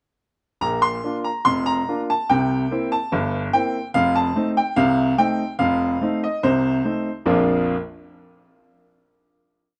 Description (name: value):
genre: ragtime piano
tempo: 72 BPM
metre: 2/4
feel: straight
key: Bb major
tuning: A4 = 440 Hz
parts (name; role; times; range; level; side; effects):
- bright upright piano; solo; 0.6-7.7 s; F1 to C6; -21 LUFS; equal; none
room: small room ambience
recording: dry, close 1970s-style studio recording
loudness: -21 LUFS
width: mono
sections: 0.6-7.3 A section; 7.3-8.9 final chord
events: none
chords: 0.6 Bb; 2.3 C7; 3.9 F7; 7.3 Bb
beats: | 0.61 1.45 | 2.28 3.11 | 3.93 4.76 | 5.60 6.43 | 7.28